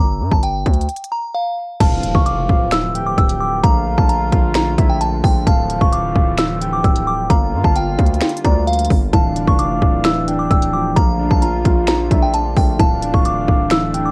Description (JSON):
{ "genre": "hip hop, trap", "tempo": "131 BPM", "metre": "4/4", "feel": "half-time", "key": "D minor", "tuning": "A4 = 440 Hz", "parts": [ { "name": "delicate synth tine bell", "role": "melody", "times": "0.0-14.1 s", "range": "F5 to E6", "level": "-24 LUFS", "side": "equal", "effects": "chorus, phaser, low-pass filter, cassette tape" }, { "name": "distorted 808-style bass", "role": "bass", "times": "0.0-14.1 s", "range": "D1 to G2", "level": "-23 LUFS", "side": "equal", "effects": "distortion" }, { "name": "trap drum kit", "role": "drums", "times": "0.3-14.0 s", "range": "crash cymbal, finger snaps, hi-hat, kick drum, snare drum", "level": "-18 LUFS", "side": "equal", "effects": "cassette tape" }, { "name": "soft octave-layered synth lead", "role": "second line", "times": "1.8-14.1 s", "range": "D5 to G5", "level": "-26 LUFS", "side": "equal", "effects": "chorus, phaser, cassette tape, analog delay" }, { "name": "warm analog pad", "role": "sustained chords", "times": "1.8-14.1 s", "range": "D3 to F4", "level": "-28 LUFS", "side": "equal", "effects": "chorus, cassette tape" }, { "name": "impact", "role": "sound effects", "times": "1.8-3.6 s", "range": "none", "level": "-32 LUFS", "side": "equal", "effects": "none" }, { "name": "dark grand piano", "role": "accompaniment", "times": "9.1-14.1 s", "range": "E3 to F4", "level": "-25 LUFS", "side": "equal", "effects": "low-pass filter, cassette tape" } ], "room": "digital ambience", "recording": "home recording on cassette", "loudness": "-16 LUFS", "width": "mono", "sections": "0.0-1.8 A section; 1.8-14.1 B section", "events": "break 0.9-1.8; impact 1.8-3.6", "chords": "0.0 G5; 1.8 Dmadd9; 3.6 Bbmaj7; 5.5 Dmadd9; 7.3 Gm7; 9.1 Dmadd9; 11.0 Bbmaj7; 12.8 Dmadd9", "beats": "0.43 0.89 1.35 | 1.80 2.26 2.72 3.18 | 3.64 4.09 4.55 5.01 | 5.47 5.93 6.38 6.84 | 7.30 7.76 8.22 8.67 | 9.13 9.59 10.05 10.51 | 10.96 11.42 11.88 12.34 | 12.80 13.25 13.71" }